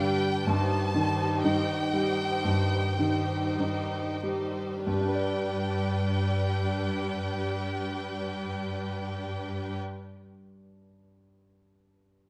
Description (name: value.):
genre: classical.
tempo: 44-65 BPM.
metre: 4/4.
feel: rubato.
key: G major.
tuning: A4 = 436 Hz.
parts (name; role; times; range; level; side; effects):
clear concert grand piano; melody; 0.0-12.3 s; G2 to D5; -32 LUFS; equal; none.
rich studio violin section; melody; 0.0-9.8 s; G5 to A5; -37 LUFS; equal; none.
warm studio violin section; second line; 0.0-9.8 s; G4 to C5; -40 LUFS; equal; none.
rich studio viola section; accompaniment; 0.0-9.8 s; G3 to Eb4; -38 LUFS; equal; none.
warm studio cello section; bass; 0.0-9.8 s; G2; -36 LUFS; equal; none.
room: moderate recital hall reverb, RT60 1.4 s.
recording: close, detailed microphones.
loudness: -29 LUFS.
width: mono.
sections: 0.0-4.9 A section; 4.9-9.4 B section.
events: slowing down 0.0-4.9.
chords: 0.5 Cm/G; 4.9 G.